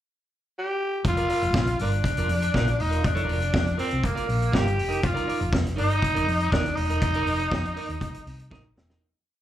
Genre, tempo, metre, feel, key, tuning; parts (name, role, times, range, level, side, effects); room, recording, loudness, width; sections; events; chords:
disco; 120 BPM; 4/4; straight; A4 = 441 Hz
growling tenor saxophone; melody; 0.6-8.7 s; Bb3 to G4; -26 LUFS; left 1 dB; slapback echo
clean electric guitar; accompaniment; 1.0-9.0 s; Eb4 to F5; -33 LUFS; right 6 dB; slapback echo
vintage drum kit; drums; 1.0-9.0 s; hi-hat, kick drum, snare drum; -28 LUFS; equal
hollow-body short-scale fingered electric bass; bass; 1.1-9.0 s; E1 to F2; -26 LUFS; equal
little or no reverb; live gig heard through the venue's PA, club reverb; -22 LUFS; side -12 dB against mid
0.0-1.0 pickup bar; 1.0-9.0 pre-chorus
fade-out 7.0-9.0; drum fill 8.5-9.0
0.0 N.C.; 1.0 Gm7 (rootless); 4.8 Cm9 (rootless)